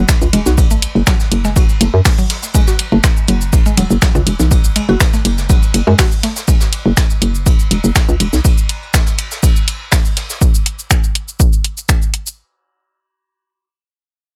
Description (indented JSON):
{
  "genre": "minimal techno",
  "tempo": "122 BPM",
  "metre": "4/4",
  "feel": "straight",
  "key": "F# minor",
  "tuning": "A4 = 442 Hz",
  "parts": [
    { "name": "mallet-like synth pluck", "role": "riff", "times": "0.0-6.3 s", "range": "C#3 to F#4", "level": "-23 LUFS", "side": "equal", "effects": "chorus, sidechain pumping, delay" },
    { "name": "hollow knocking FM bass", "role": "bass", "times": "0.0-8.4 s", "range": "E1 to F#2", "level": "-16 LUFS", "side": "equal", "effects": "tube saturation, sidechain pumping" },
    { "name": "electronic kick drum", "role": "drums", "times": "0.1-12.0 s", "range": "none", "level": "-15 LUFS", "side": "equal", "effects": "none" },
    { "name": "punchy analog drum machine", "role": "drums", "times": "0.1-12.4 s", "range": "finger snaps, hi-hat, shaker", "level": "-19 LUFS", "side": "equal", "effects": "none" },
    { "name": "vintage brush drum kit", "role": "drums", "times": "0.1-10.4 s", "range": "hi-hat, ride cymbal, snare drum", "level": "-28 LUFS", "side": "equal", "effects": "high-pass filter on cymbals, high-pass filter on hats, high-pass filter on snare, high-pass filter on room" }
  ],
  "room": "little or no reverb",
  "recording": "none",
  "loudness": "-13 LUFS",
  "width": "mono",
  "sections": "0.0-12.4 A section",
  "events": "drop 0.0-12.4",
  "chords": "none"
}